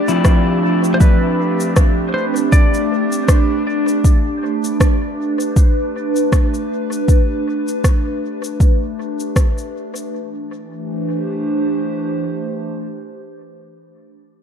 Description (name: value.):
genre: ambient dub.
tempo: 79 BPM.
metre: 4/4.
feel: swing 57% on 16ths.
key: D dorian.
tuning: A4 = 440 Hz.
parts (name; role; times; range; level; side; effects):
clean lap steel guitar; melody; 0.0-3.6 s; B4 to D5; -25 LUFS; equal; dub echo.
warbly tape-like pad; sustained chords; 0.0-13.9 s; E3 to C5; -19 LUFS; right 1 dB; chorus, built-in reverb, phaser.
semi-hollow electric guitar; stabs; 0.1-2.1 s; F3 to E4; -19 LUFS; left 1 dB; dub echo.
electronic cabasa and rim click; drums; 0.1-10.1 s; none; -25 LUFS; left 1 dB; studio reverb, dub echo.
electronic kick drum; drums; 0.2-9.5 s; none; -12 LUFS; equal; studio reverb.
room: light reverb, digital ambience.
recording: dark, warm production.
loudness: -14 LUFS.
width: side -8 dB against mid.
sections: 0.0-4.0 A section; 4.0-10.1 B section; 10.1-13.2 C section.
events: none.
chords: 0.0 Dm7; 4.0 G; 10.1 D5.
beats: 0.25 | 1.00 1.76 2.52 3.28 | 4.04 4.80 5.56 6.32 | 7.08 7.84 8.60 9.36 | 10.12 10.88 11.64 12.40.